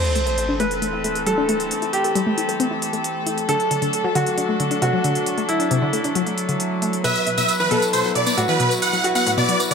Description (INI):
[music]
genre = uplifting trance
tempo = 135 BPM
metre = 4/4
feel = straight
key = unclear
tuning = A4 = 435 Hz
[part]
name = bright concert grand piano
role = second line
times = 0.0-9.7 s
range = E4 to C5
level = -23 LUFS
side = right 1 dB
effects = dub echo
[part]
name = rich chamber string section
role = sustained chords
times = 0.0-9.7 s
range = E3 to B4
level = -25 LUFS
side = left 1 dB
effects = none
[part]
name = electronic hi-hat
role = drums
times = 0.0-9.7 s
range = none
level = -28 LUFS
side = equal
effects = none
[part]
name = sub drop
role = sound effects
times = 0.0-1.7 s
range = none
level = -27 LUFS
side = equal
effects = none
[part]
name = analog pluck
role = arpeggios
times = 0.2-9.7 s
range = A2 to A4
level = -24 LUFS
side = left 3 dB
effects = chorus, dub echo
[part]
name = big supersaw lead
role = melody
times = 7.0-9.7 s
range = B4 to F#5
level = -21 LUFS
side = right 2 dB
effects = phaser, dub echo
[part]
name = tambourine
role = percussion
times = 7.0-9.7 s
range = none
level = -29 LUFS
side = left 1 dB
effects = none
[sound]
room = moderate lush hall reverb, RT60 2.6 s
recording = none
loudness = -18 LUFS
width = side -6 dB against mid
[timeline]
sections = 0.0-9.7 A section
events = impact 0.0-1.7; filter sweep on synth arpeggio sound 0.0-9.7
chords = 0.0 Am; 3.5 D; 7.0 Bsus4